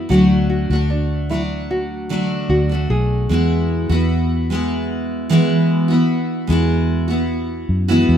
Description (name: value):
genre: acoustic pop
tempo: 75 BPM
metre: 4/4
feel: straight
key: unclear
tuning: A4 = 440 Hz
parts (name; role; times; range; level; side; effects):
- nylon-string guitar; melody; 0.0-5.7 s; D4 to G#4; -25 LUFS; equal; none
- picked steel-string acoustic guitar; accompaniment; 0.0-8.2 s; D3 to F#4; -18 LUFS; equal; double-tracked left and right
- vintage muted fingered electric bass; bass; 0.0-8.2 s; B1 to F#2; -19 LUFS; equal; none
room: light reverb, studio reverb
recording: rough home demo mix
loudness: -16 LUFS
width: side -9 dB against mid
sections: 0.0-6.5 A section; 6.5-8.2 B section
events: none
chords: 0.1 D; 3.3 Eadd9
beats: | 0.11 0.90 1.70 2.50 | 3.30 4.10 4.89 5.69 | 6.49 7.29 8.08